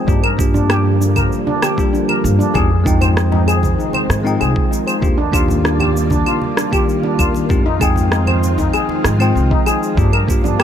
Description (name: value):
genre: sunset chillout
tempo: 97 BPM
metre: 4/4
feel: straight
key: F dorian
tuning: A4 = 440 Hz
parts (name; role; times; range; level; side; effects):
- bell-like tine electric piano; accompaniment; 0.0-10.6 s; Eb3 to G5; -21 LUFS; left 1 dB; auto-pan, tape echo
- soft string machine; sustained chords; 0.0-10.6 s; D3 to D5; -23 LUFS; right 1 dB; ensemble chorus
- steel pan; arpeggios; 0.1-10.6 s; D4 to C5; -21 LUFS; left 1 dB; tape echo
- upright bass; bass; 0.1-10.6 s; C2 to Ab2; -17 LUFS; equal; none
- electronic cabasa, claves and rim click; drums; 0.1-10.6 s; none; -21 LUFS; right 2 dB; overdrive
- electronic kick drum; drums; 0.1-10.4 s; none; -18 LUFS; equal; none
- congas; percussion; 0.5-10.6 s; none; -28 LUFS; right 3 dB; none
room: light reverb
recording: none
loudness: -13 LUFS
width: side -9 dB against mid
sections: 0.0-10.6 A section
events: none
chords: 0.1 Gm7; 2.6 Fm7; 5.0 Ebmaj9; 7.5 Fm7; 10.0 Gm7